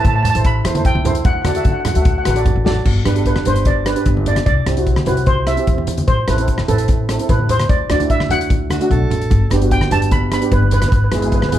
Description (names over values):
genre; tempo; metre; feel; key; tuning
calypso; 149 BPM; 4/4; straight; G major; A4 = 441 Hz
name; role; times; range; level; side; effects
steel pan; melody; 0.0-11.6 s; A4 to B5; -21 LUFS; right 1 dB; none
steel pan; accompaniment; 0.0-11.6 s; A3 to E5; -21 LUFS; right 2 dB; none
upright bass; bass; 0.0-11.6 s; G1 to D3; -18 LUFS; left 1 dB; none
loose indie drum kit; drums; 0.0-11.6 s; crash cymbal, hi-hat, kick drum, rim click, snare drum; -19 LUFS; left 1 dB; none
congas; percussion; 0.0-11.6 s; none; -23 LUFS; right 2 dB; none
breathy alto saxophone; second line; 8.7-9.6 s; F#4 to A4; -25 LUFS; right 4 dB; none
room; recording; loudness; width
light reverb; dark, warm production; -13 LUFS; side -12 dB against mid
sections
0.0-2.9 A section; 2.9-11.6 B section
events
drum fill 2.1-2.9, 8.5-9.3; steel pan solo 2.9-11.6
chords
0.0 Amadd9; 1.3 D; 2.9 G; 4.5 Cadd9; 6.1 Am; 7.7 D; 9.3 G; 10.9 E/G#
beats
0.05 0.45 0.85 | 1.25 1.65 2.05 2.46 | 2.86 3.26 3.66 4.07 | 4.47 4.87 5.28 5.68 | 6.08 6.49 6.89 7.29 | 7.70 8.10 8.50 8.91 | 9.31 9.71 10.12 10.52 | 10.92 11.32